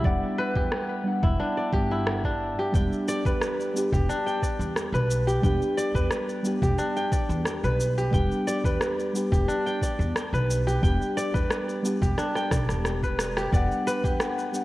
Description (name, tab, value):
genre	organic downtempo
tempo	89 BPM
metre	4/4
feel	straight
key	unclear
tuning	A4 = 441 Hz
part	muted felt-like synth keys	accompaniment	0.0-14.6 s	G3 to F#5	-30 LUFS	equal	chorus, phaser, sidechain pumping, ping-pong delay, shimmer reverb
part	kora	arpeggios	0.0-14.6 s	D4 to G5	-28 LUFS	equal	ping-pong delay, shimmer reverb
part	upright bass	bass	0.0-14.2 s	E1 to E2	-27 LUFS	equal	sidechain pumping
part	electronic kick drum	drums	0.0-14.2 s	none	-26 LUFS	equal	none
part	electronic rim click and cabasa	drums	0.7-14.6 s	none	-32 LUFS	equal	none
room	moderate lush hall reverb, RT60 2.3 s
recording	worn, warbling old tape, cassette tape, warbly pitch drift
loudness	-23 LUFS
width	side -17 dB against mid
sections	0.0-14.6 A section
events	drum fill 12.2-13.5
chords	0.0 Em7; 2.7 G/E; 13.5 Em7